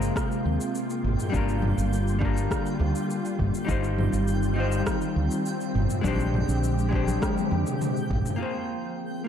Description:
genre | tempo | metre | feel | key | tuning
sunset chillout | 102 BPM | 4/4 | straight | Ab lydian | A4 = 439 Hz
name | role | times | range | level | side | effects
vintage hollow-body jazz guitar | accompaniment | 0.0-9.3 s | G3 to C5 | -31 LUFS | moving between left 6 dB and right 3 dB | auto-pan, ping-pong delay
soft string machine | sustained chords | 0.0-9.3 s | C3 to Ab4 | -30 LUFS | left 1 dB | ensemble chorus
mellow fretless electric bass | bass | 0.0-8.2 s | G1 to F2 | -26 LUFS | right 1 dB | none
deep house drum kit | drums | 0.0-9.3 s | rim click, shaker, toms | -32 LUFS | equal | overdrive, low-pass filter on perc, low-pass filter on toms, low-pass filter on snare, low-pass filter on room
twinkling granular texture | texture | 0.0-9.3 s | G5 | -40 LUFS | right 1 dB | built-in reverb
electronic kick drum | drums | 0.2-8.2 s | none | -30 LUFS | right 1 dB | overdrive
congas | percussion | 1.6-7.6 s | none | -35 LUFS | left 4 dB | none
room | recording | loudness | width
moderate digital room reverb, RT60 1.3 s | dark, warm production | -24 LUFS | side -9 dB against mid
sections
0.0-8.4 A section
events
drum fill 7.2-8.4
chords
0.0 Ab69; 1.3 Gm7; 3.7 Eb69/G; 6.0 Bb13; 8.4 Ab69

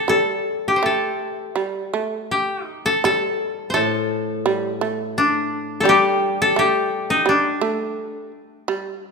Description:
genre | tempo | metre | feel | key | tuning
japanese traditional, Japanese chamber music | 84 BPM | 4/4 | uneven beats, rubato | unclear | A4 = 439 Hz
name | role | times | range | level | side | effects
koto | melody | 0.0-9.1 s | D4 to C5 | -19 LUFS | left 2 dB | none
shamisen | second line | 0.1-9.1 s | G3 to A3 | -25 LUFS | right 5 dB | none
koto | accompaniment | 3.8-7.9 s | A2 to G3 | -26 LUFS | left 3 dB | none
room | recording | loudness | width
moderate scoring stage reverb, RT60 1.9 s | minimal, uncompressed stereo recording | -18 LUFS | side -4 dB against mid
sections
0.0-9.1 A section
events
none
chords
none

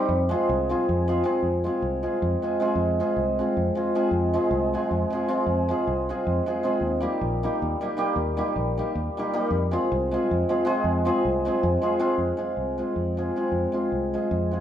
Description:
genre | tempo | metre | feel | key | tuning
balkan folk, Balkan wedding band | 313 BPM (eighths) | 7/8 | straight | F minor | A4 = 441 Hz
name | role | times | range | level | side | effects
hammered dulcimer | accompaniment | 0.0-14.6 s | G3 to Ab4 | -23 LUFS | equal | none
fingered electric bass | bass | 0.1-14.6 s | Bb1 to F2 | -28 LUFS | equal | none
room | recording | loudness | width
wet large studio reverb, RT60 0.9 s | band playing live in one room | -22 LUFS | side -10 dB against mid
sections
0.0-1.4 A section; 1.4-12.2 B section; 12.2-14.6 C section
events
none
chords
0.1 Fm; 6.8 Eb; 9.5 Fm

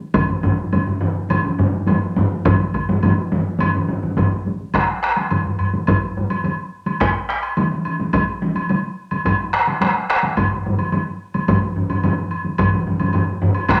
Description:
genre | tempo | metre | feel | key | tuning
japanese traditional, taiko drum ensemble | 106 BPM | 4/4 | straight | none | none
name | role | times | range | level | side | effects
taiko ensemble | percussion | 0.0-13.8 s | none | -25 LUFS | equal | none
solo taiko drums | percussion | 0.1-13.8 s | none | -26 LUFS | equal | none
taiko ensemble | percussion | 0.1-13.8 s | none | -22 LUFS | equal | none
taiko ensemble | percussion | 0.1-13.5 s | none | -26 LUFS | equal | none
woodblock | percussion | 0.1-13.8 s | none | -28 LUFS | equal | none
room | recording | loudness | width
wet studio reverb, RT60 0.7 s | none | -20 LUFS | mono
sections
0.0-4.7 A section; 4.7-13.8 B section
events
speeding up 0.0-13.8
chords
none

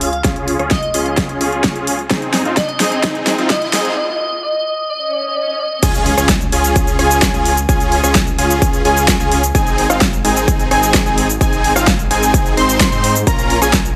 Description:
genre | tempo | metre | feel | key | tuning
EDM, festival progressive house | 129 BPM | 4/4 | straight | unclear | A4 = 440 Hz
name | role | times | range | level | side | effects
airy dreamy lead | melody | 0.0-5.8 s | Eb5 to F5 | -23 LUFS | equal | chorus, tape echo
supersaw chords | riff | 0.0-13.8 s | C4 to C5 | -21 LUFS | equal | cassette tape, sidechain pumping, low-pass filter, tape echo
detuned saw bass | bass | 0.0-13.9 s | Ab1 to Ab2 | -24 LUFS | equal | chorus, sidechain pumping
big-room dance drum kit | drums | 0.0-13.9 s | crash cymbal, hi-hat, rim click, shaker, snare drum | -20 LUFS | equal | overdrive
riser, swell and impact | sound effects | 0.6-7.7 s | none | -31 LUFS | equal | none
electronic kick drum | drums | 0.2-13.8 s | none | -20 LUFS | equal | overdrive
unison lead | arpeggios | 5.8-13.8 s | F5 to C6 | -21 LUFS | equal | sidechain pumping, tape echo
room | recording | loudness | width
moderate scoring stage reverb, RT60 1.7 s | high-pass filter | -15 LUFS | mono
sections
0.0-5.8 A section; 5.8-14.0 B section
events
build-up 0.0-5.8; drum fill 0.0-4.0; filter sweep on supersaw synth 0.0-5.8; break 4.0-5.8; swell 5.0-5.8; drop 5.8-14.0; impact 5.8-7.7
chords
0.0 Db; 2.1 Ab; 5.8 Db; 9.5 Ab; 13.3 Bbm

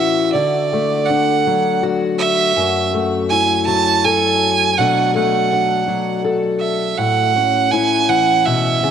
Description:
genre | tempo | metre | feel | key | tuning
folk | 81 BPM | 3/4 | straight | A major | A4 = 441 Hz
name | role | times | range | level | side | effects
rich fiddle | melody | 0.0-8.9 s | D5 to A5 | -16 LUFS | right 7 dB | cassette tape
fingerpicked steel-string acoustic guitar | accompaniment | 0.0-8.9 s | F#2 to A4 | -18 LUFS | left 5 dB | cassette tape
room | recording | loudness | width
moderate lush hall reverb, RT60 3.2 s | home recording on cassette | -14 LUFS | side -8 dB against mid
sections
0.0-8.9 A section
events
none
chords
0.3 D; 2.6 F#m7; 4.8 Bm7; 7.0 A6

